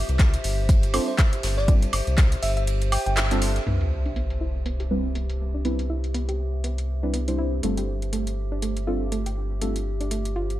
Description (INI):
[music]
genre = deep house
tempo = 121 BPM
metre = 4/4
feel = swing 57% on 16ths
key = C major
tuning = A4 = 440 Hz
[part]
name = round analog bass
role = bass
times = 0.0-10.6 s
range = G1 to C2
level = -26 LUFS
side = equal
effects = sidechain pumping
[part]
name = warbly tape-like pad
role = texture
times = 0.0-10.6 s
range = G4 to E5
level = -35 LUFS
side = right 1 dB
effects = chorus, built-in reverb, sidechain pumping
[part]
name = deep house drum kit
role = drums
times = 0.1-10.6 s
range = handclaps, hi-hat, woodblock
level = -30 LUFS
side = equal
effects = overdrive, low-pass filter on hats, low-pass filter on perc, low-pass filter on snare, low-pass filter on room
[part]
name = soft brush drum kit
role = drums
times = 0.1-3.7 s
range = ride cymbal, snare drum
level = -38 LUFS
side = right 2 dB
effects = high-pass filter on cymbals, high-pass filter on snare, high-pass filter on room
[part]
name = electronic kick drum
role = drums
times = 0.2-2.3 s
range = none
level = -18 LUFS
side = equal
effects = overdrive
[part]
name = bell-like FM electric piano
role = melody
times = 0.9-3.1 s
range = C5 to G5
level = -32 LUFS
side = equal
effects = chorus, digital delay
[part]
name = deep mellow chord stab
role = stabs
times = 0.9-9.8 s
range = G3 to C5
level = -31 LUFS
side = equal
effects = chorus, phaser, sidechain pumping, dub echo
[part]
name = soft round pluck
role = arpeggios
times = 3.7-10.4 s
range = A3 to G4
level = -33 LUFS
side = right 2 dB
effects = chorus, sidechain pumping, dub echo
[part]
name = sub drop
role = sound effects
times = 3.7-5.6 s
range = none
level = -29 LUFS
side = equal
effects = none
[sound]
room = light reverb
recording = none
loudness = -22 LUFS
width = side -14 dB against mid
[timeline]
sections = 0.0-3.7 A section; 3.7-10.6 B section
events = filter sweep on synth stab 0.0-3.7; break 2.7-3.7; band accent 3.2; impact 3.7-5.6; filter sweep on synth arpeggio sound 3.7-10.6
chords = 0.0 G9sus4; 3.7 Cmaj9; 7.6 G9sus4